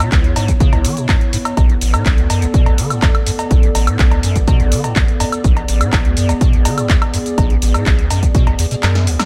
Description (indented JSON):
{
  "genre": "acid house",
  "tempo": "124 BPM",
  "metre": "4/4",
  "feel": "straight",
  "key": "unclear",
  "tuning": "A4 = 440 Hz",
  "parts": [
    { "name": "dark analog pad", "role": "sustained chords", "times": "0.0-9.3 s", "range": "B3 to D5", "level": "-26 LUFS", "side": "equal", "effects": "chorus, vintage 12-bit sampler grit, sidechain pumping" },
    { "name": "liquid acid bass", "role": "riff", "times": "0.0-9.2 s", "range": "A1 to E3", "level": "-19 LUFS", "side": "equal", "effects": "ensemble chorus, sidechain pumping, digital delay" },
    { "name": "punchy analog drum machine", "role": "drums", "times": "0.0-9.3 s", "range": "cowbell, handclaps, hi-hat, shaker, snare drum, woodblock", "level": "-23 LUFS", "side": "equal", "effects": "none" },
    { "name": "electronic kick drum", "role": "drums", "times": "0.1-8.4 s", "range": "none", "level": "-16 LUFS", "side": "equal", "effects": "none" }
  ],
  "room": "little or no reverb",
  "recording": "none",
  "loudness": "-14 LUFS",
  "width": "mono",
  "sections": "0.0-9.3 A section",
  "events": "kick drops out 8.8-9.3; drum fill 8.8-9.3",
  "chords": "0.0 C#m7; 1.6 Bm7"
}